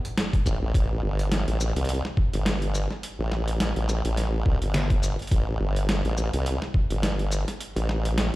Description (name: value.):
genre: glitch hop.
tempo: 105 BPM.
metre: 4/4.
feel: swing 56% on 16ths.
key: A minor.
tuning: A4 = 445 Hz.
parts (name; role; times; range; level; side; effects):
boom bap sampler-style drum kit; drums; 0.0-8.3 s; hi-hat, shaker, snare drum; -30 LUFS; equal; overdrive.
electronic kick drum; drums; 0.3-6.9 s; none; -23 LUFS; equal; overdrive.
formant-sweep wobble bass; bass; 0.5-8.4 s; G1 to C2; -25 LUFS; equal; chorus.
room: digital ambience.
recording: played on a big sound system in a bare room, large studio reverb.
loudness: -23 LUFS.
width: side -18 dB against mid.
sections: 0.0-8.4 A section.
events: kick drops out 7.6-8.4.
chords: none.